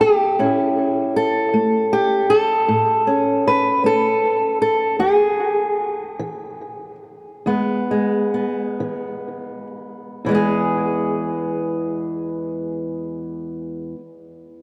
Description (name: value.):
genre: acoustic country blues, solo or duo.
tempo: 39-52 BPM (dotted quarters).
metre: 12/8.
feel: straight.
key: E major.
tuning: A4 = 441 Hz.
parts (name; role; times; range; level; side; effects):
fingerpicked old ladder-braced acoustic guitar; solo; 0.0-14.0 s; E2 to B4; -20 LUFS; equal; tape echo.
room: wet cathedral reverb, RT60 4.3 s.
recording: dreamy mix soaked in reverb.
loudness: -20 LUFS.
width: mono.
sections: 0.0-10.3 A section; 10.3-14.6 B section.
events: slowing down 3.5-10.3.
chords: 0.4 A; 5.0 E.